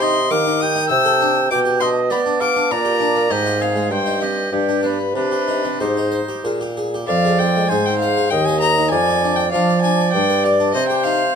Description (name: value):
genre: classical, baroque-style sonata movement with continuo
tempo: 99 BPM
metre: 3/4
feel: straight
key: C minor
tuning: A4 = 440 Hz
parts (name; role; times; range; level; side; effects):
- rich violin; melody; 0.0-11.4 s; B4 to E6; -20 LUFS; left 6 dB; none
- warm oboe; second line; 0.0-11.4 s; D4 to G5; -22 LUFS; right 9 dB; none
- harpsichord; accompaniment; 0.0-11.3 s; Eb2 to D5; -22 LUFS; left 1 dB; none
- mellow bassoon; bass; 0.0-11.3 s; Eb2 to B3; -20 LUFS; right 1 dB; none
room: moderate recital hall reverb, RT60 1.6 s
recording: close, detailed microphones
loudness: -15 LUFS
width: side -7 dB against mid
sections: 0.0-7.1 A section; 7.1-11.4 A section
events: none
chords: 0.0 Cm; 0.9 D5/C; 1.5 G/B; 2.7 Gm/Bb; 3.3 Fm/Ab; 3.9 Cm/G; 4.5 G; 5.2 Cm; 7.1 Fm; 8.3 Cm/Eb; 8.9 Fm6; 10.1 G; 10.7 Cm